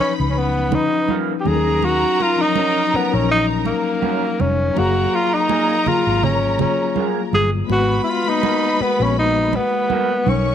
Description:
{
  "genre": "lush 1970s-style soul",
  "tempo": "82 BPM",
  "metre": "4/4",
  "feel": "swing 54% on 16ths",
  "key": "G# dorian",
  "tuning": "A4 = 440 Hz",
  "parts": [
    { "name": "breathy tenor saxophone", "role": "melody", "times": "0.0-10.5 s", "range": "A#3 to G#4", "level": "-19 LUFS", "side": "equal", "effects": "none" },
    { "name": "warm studio string section", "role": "second line", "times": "0.0-10.5 s", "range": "A#4 to C#6", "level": "-25 LUFS", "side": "equal", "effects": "none" },
    { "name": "mellow tine electric piano", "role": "accompaniment", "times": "0.0-10.5 s", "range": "E#3 to E#5", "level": "-23 LUFS", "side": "left 10 dB", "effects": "medium stereo tremolo" },
    { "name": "vintage muted fingered electric bass", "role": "bass", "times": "0.0-10.5 s", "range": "E#1 to D#2", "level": "-21 LUFS", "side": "equal", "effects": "none" },
    { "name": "congas", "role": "percussion", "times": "0.7-10.5 s", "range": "none", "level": "-25 LUFS", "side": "right 11 dB", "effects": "none" },
    { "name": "electric guitar through a small old amp", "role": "riff", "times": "1.1-10.1 s", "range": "A#3 to A#4", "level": "-27 LUFS", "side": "right 12 dB", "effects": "analog chorus" }
  ],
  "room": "light reverb, small room reverb",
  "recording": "1960s-style stereo with parts hard left and right",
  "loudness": "-16 LUFS",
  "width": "side -9 dB against mid",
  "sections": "0.0-10.5 A section",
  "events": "none",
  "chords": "0.0 Bmaj9#11; 1.4 D#m7; 4.8 F#maj9; 7.7 G#m9"
}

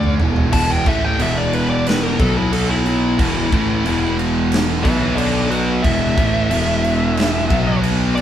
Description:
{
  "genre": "stoner and doom metal",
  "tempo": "90 BPM",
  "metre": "4/4",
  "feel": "straight",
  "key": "unclear",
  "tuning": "A4 = 437 Hz",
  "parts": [
    { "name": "fuzz lead guitar", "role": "melody", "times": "0.0-8.2 s", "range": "E4 to A5", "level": "-22 LUFS", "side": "left 1 dB", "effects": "distortion" },
    { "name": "thick fuzz guitar", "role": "riff", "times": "0.0-8.2 s", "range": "E2 to D4", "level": "-22 LUFS", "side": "left 5 dB", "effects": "distortion" },
    { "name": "thick fuzz guitar", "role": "riff", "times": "0.0-8.2 s", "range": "E2 to D4", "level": "-22 LUFS", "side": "right 6 dB", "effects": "distortion" },
    { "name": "fuzz fingered electric bass", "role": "bass", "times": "0.0-8.2 s", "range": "E1 to D2", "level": "-22 LUFS", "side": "equal", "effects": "overdrive" },
    { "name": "big rock drum kit", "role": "drums", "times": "0.0-8.2 s", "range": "crash cymbal, kick drum, snare drum, toms", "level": "-21 LUFS", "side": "equal", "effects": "none" },
    { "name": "distorted electric guitar", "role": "riff", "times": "0.5-8.2 s", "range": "E2 to B3", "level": "-26 LUFS", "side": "equal", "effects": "overdrive" }
  ],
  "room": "moderate stone room reverb, RT60 1.3 s",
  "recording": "band playing live in one room",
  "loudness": "-15 LUFS",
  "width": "side -10 dB against mid",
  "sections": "0.5-8.2 A section",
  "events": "drum fill 0.0-0.5; lead electric guitar solo 0.5-8.2",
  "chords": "0.0 E5; 2.2 B5; 3.2 E5; 4.8 B5; 5.8 E5; 7.5 B5"
}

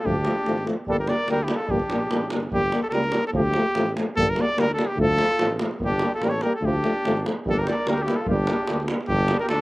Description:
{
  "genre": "balkan folk, Balkan brass band",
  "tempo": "146 BPM",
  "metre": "2/4",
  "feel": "straight",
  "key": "G minor",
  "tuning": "A4 = 439 Hz",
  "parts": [
    { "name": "clear trumpet", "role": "melody", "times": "0.0-9.6 s", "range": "G4 to D5", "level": "-25 LUFS", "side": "equal", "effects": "none" },
    { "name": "warm flugelhorn", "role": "second line", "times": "0.0-2.3, 5.0-9.6 s", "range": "D4 to Bb4", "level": "-32 LUFS", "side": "left 1 dB", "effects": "slapback echo" },
    { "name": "mellow euphonium", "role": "accompaniment", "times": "0.0-9.4 s", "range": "A3 to Bb3", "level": "-27 LUFS", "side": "left 2 dB", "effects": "none" },
    { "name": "mellow tuba", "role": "bass", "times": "0.0-9.6 s", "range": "G1 to D2", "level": "-28 LUFS", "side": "equal", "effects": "none" },
    { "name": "clear trombone", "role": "accompaniment", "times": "0.1-9.4 s", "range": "F3 to G3", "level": "-30 LUFS", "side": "right 2 dB", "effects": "slapback echo" },
    { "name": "davul", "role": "percussion", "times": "0.1-9.6 s", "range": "none", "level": "-29 LUFS", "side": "right 1 dB", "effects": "slapback echo" }
  ],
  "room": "little or no reverb",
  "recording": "recorded outdoors, with no room sound",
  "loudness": "-21 LUFS",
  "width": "side -20 dB against mid",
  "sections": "0.0-2.5 A section; 2.5-9.1 A section",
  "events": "none",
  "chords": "0.1 Dm; 0.9 Gm; 3.3 Dm; 4.2 Gm; 5.0 Dm; 5.8 Gm; 6.6 Dm; 7.4 Gm"
}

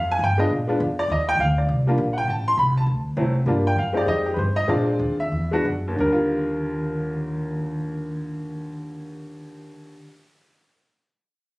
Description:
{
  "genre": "jazz piano trio",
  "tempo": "172-203 BPM",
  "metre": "4/4",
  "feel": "swing 60% on 8ths",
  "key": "Eb major",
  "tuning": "A4 = 440 Hz",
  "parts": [
    { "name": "bright upright piano", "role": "melody", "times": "0.0-10.2 s", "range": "Eb2 to C6", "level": "-23 LUFS", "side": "equal", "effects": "none" },
    { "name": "upright bass", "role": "bass", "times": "0.0-10.0 s", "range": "A1 to Bb2", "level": "-25 LUFS", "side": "equal", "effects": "none" }
  ],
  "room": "moderate studio reverb, RT60 0.5 s",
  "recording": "recorded on a phone in the room, studio reverb, compression",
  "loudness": "-20 LUFS",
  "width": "side -21 dB against mid",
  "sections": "0.0-3.5 A section; 3.5-6.0 B section; 6.0-8.8 C section",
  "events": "slowing down 3.5-6.0",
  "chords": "0.0 Fmadd9; 0.5 Bb; 1.1 Ebmaj9; 2.3 Amadd9; 2.9 D7; 3.5 Gm7; 4.1 Fm7; 4.7 Bb7; 5.3 Esus2; 6.0 Ebmaj9"
}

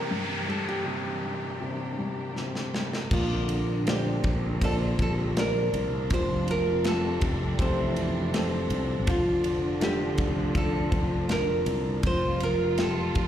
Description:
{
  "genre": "pop ballad",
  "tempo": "81 BPM",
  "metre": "4/4",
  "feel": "straight",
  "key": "F major",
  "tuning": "A4 = 440 Hz",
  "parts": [
    { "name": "nylon-string guitar", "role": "melody", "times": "0.0-13.3 s", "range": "F4 to C5", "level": "-31 LUFS", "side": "right 2 dB", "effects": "plate reverb, slapback echo" },
    { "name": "warm upright piano", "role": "accompaniment", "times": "0.0-13.3 s", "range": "G2 to D5", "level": "-32 LUFS", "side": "left 3 dB", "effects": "plate reverb, slapback echo" },
    { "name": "warm studio string section", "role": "sustained chords", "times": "0.0-13.3 s", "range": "C3 to G4", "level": "-35 LUFS", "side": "right 1 dB", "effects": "plate reverb" },
    { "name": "noise sweep", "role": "sound effects", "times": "0.0-3.1 s", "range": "none", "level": "-36 LUFS", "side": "left 1 dB", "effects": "slapback echo" },
    { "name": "modern studio drum kit", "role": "drums", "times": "2.4-13.3 s", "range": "crash cymbal, kick drum, ride cymbal, snare drum", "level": "-31 LUFS", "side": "equal", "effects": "none" },
    { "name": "dark French horn section", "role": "second line", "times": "3.1-13.1 s", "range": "D3 to G4", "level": "-36 LUFS", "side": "right 2 dB", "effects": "plate reverb, slapback echo" },
    { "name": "sustaining fretless electric bass", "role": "bass", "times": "3.1-13.3 s", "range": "F1 to C2", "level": "-29 LUFS", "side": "equal", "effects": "none" }
  ],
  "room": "moderate club reverb, RT60 0.7 s",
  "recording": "live gig heard through the venue's PA, recital hall reverb",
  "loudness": "-24 LUFS",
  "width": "side -10 dB against mid",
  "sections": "0.0-3.1 A section; 3.1-13.3 B section",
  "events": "noise sweep 0.0-3.1; drum fill 2.4-3.1",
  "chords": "0.0 C7; 3.1 Bbadd9; 6.1 Fadd9; 9.1 Dm/F; 12.0 Fadd9"
}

